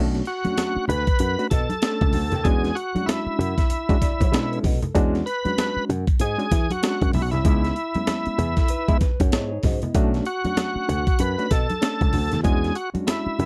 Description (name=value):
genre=funk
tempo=96 BPM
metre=4/4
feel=swing 60% on 16ths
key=unclear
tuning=A4 = 440 Hz
part: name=reed electric piano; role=stabs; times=0.0-13.4 s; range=F#3 to D#5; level=-30 LUFS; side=equal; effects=overdrive, fast tremolo
part: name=slap bass with an envelope filter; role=bass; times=0.0-13.5 s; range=B1 to E3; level=-27 LUFS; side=equal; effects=none
part: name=breakbeat sampler-style drum kit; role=drums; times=0.1-13.5 s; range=hi-hat, kick drum, snare drum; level=-24 LUFS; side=equal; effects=none
part: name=overdriven tonewheel organ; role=melody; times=0.3-13.5 s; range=E4 to B4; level=-28 LUFS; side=equal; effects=chorus vibrato
part: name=congas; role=percussion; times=0.4-13.5 s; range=none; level=-33 LUFS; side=equal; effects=none
room=little or no reverb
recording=dry, close 1970s-style studio recording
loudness=-22 LUFS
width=mono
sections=0.0-13.5 A section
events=reed electric piano fill 3.7-5.0, 8.1-9.9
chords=0.0 Bm9; 2.5 E13; 7.4 C#m7; 9.9 Bm9; 12.4 E13